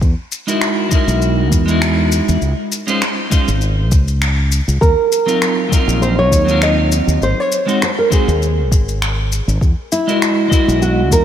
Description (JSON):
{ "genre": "sunset chillout", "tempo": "100 BPM", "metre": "4/4", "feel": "swing 55% on 16ths", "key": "unclear", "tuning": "A4 = 436 Hz", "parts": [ { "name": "fretless electric bass", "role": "bass", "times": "0.0-11.2 s", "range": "Ab1 to E2", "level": "-16 LUFS", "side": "equal", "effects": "none" }, { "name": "electronic kick drum", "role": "drums", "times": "0.0-11.2 s", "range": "none", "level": "-14 LUFS", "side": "equal", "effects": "none" }, { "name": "electronic shaker and finger snaps", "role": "drums", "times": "0.0-11.2 s", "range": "none", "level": "-23 LUFS", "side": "left 2 dB", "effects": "none" }, { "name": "clean electric guitar", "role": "accompaniment", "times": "0.5-11.2 s", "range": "Gb3 to D#5", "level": "-18 LUFS", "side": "right 1 dB", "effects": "auto-pan, tape echo, slapback echo" }, { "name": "nylon-string guitar", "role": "melody", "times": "4.8-11.2 s", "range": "E4 to Eb5", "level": "-17 LUFS", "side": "right 1 dB", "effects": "ping-pong delay, slapback echo" } ], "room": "moderate lush hall reverb, RT60 2.5 s", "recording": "big arena sound", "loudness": "-13 LUFS", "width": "side -10 dB against mid", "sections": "0.0-11.2 A section", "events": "none", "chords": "0.0 Emaj9#11; 2.4 Dbmaj9; 4.8 Ebm69; 7.2 Ab7; 9.6 Emaj9#11", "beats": "| 0.02 0.62 1.22 1.82 | 2.42 3.02 3.62 4.22 | 4.82 5.42 6.02 6.62 | 7.22 7.82 8.42 9.02 | 9.62 10.22 10.82" }